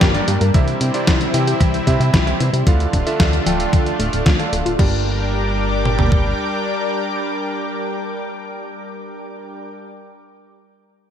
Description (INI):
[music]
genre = italo disco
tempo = 113 BPM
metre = 4/4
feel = straight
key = G dorian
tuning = A4 = 441 Hz
[part]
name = lush unison pad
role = sustained chords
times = 0.0-9.7 s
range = G3 to D6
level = -22 LUFS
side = left 1 dB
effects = chorus
[part]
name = analog pluck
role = arpeggios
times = 0.0-5.0 s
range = E3 to Bb4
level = -25 LUFS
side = left 3 dB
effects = chorus, ping-pong delay
[part]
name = bright electric grand piano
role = stabs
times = 0.0-9.7 s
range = G2 to G5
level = -25 LUFS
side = right 4 dB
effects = low-pass filter, ping-pong delay
[part]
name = chorused synth bass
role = bass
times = 0.0-6.3 s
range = D1 to C3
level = -20 LUFS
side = equal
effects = none
[part]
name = clean 12-bit digital drum machine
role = drums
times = 0.0-6.2 s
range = kick drum, toms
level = -16 LUFS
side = equal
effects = none
[part]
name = dusty soul sampler-style drum kit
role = drums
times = 0.0-4.9 s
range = crash cymbal, hi-hat, snare drum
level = -22 LUFS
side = left 1 dB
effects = gated reverb
[sound]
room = moderate lush hall reverb, RT60 1.7 s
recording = bright 1980s-style digital production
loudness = -15 LUFS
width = side -9 dB against mid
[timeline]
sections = 0.0-4.8 A section; 4.8-9.0 B section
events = filter sweep on synth arpeggio sound 0.0-4.8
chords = 0.0 Gm; 0.5 C; 2.7 Dm; 4.8 Gm